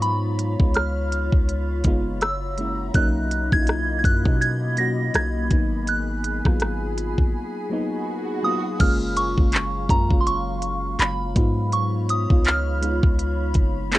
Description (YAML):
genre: contemporary R&B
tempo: 82 BPM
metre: 4/4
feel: swing 58% on 16ths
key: F# major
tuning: A4 = 441 Hz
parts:
  - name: soft synth bell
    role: melody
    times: 0.0-13.5 s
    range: A#5 to A#6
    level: -26 LUFS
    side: right 2 dB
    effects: chorus, cassette tape, analog delay
  - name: mellow FM electric piano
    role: accompaniment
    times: 0.0-14.0 s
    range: F#3 to G#4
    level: -28 LUFS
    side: left 1 dB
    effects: chorus, cassette tape
  - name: glassy FM pad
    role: sustained chords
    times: 0.0-14.0 s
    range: F#3 to B5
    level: -32 LUFS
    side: left 1 dB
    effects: ensemble chorus, built-in reverb, cassette tape
  - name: long sustained 808-style bass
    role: bass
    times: 0.0-14.0 s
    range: F#1 to B2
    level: -25 LUFS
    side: equal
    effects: none
  - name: trap drum kit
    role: drums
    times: 0.0-14.0 s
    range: crash cymbal, handclaps, hi-hat, kick drum, rim click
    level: -20 LUFS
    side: equal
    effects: vintage 12-bit sampler grit, cassette tape
  - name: swell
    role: sound effects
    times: 7.6-8.8 s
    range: none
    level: -34 LUFS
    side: right 2 dB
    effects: none
room: little or no reverb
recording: home recording on cassette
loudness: -20 LUFS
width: side -16 dB against mid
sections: 0.0-8.8 A section; 8.8-14.0 B section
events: break 7.3-8.8; swell 7.6-8.8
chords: 0.0 C#7; 2.2 F#7; 2.9 Bmaj7; 5.5 G#m7; 8.8 F#maj7; 11.4 C#7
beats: | 0.02 0.75 1.48 2.21 | 2.95 3.68 4.41 5.14 | 5.87 6.61 7.34 8.07 | 8.80 9.53 10.26 11.00 | 11.73 12.46 13.19 13.92